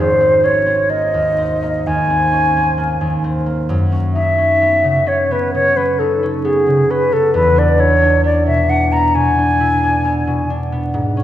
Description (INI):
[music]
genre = classical, impressionist duo for flute and harp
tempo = 66 BPM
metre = 4/4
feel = rubato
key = unclear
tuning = A4 = 440 Hz
[part]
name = concert flute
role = melody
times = 0.0-10.5 s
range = Ab4 to Bb5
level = -14 LUFS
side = left 1 dB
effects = none
[part]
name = concert harp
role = accompaniment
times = 0.0-11.2 s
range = Ab1 to E4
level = -17 LUFS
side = equal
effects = none
[sound]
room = wet scoring stage reverb, RT60 1.7 s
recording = heard from further back in the room, vinyl crackle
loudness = -13 LUFS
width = side -12 dB against mid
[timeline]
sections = 0.0-11.2 A section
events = none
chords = 0.0 Abadd9; 3.7 Gb7sus4; 7.3 E7